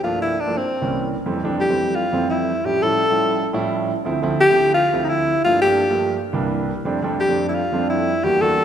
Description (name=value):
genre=jazz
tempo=172 BPM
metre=4/4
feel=straight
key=F major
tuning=A4 = 440 Hz
part: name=breathy alto saxophone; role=melody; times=0.0-8.6 s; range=C4 to A4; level=-18 LUFS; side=left 1 dB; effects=none
part: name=warm concert grand piano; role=accompaniment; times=0.0-8.6 s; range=C2 to Gb4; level=-22 LUFS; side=right 2 dB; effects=none
room=moderate concert hall reverb, RT60 2.3 s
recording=recorded in a church or concert hall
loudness=-17 LUFS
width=side -9 dB against mid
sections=0.0-1.3 A section; 1.3-8.6 B section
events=none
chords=0.0 Gm7; 0.6 C7b9; 1.3 Fmaj9; 2.7 A7b13; 4.1 Dm7; 5.5 Gm7; 6.2 C9; 6.8 F69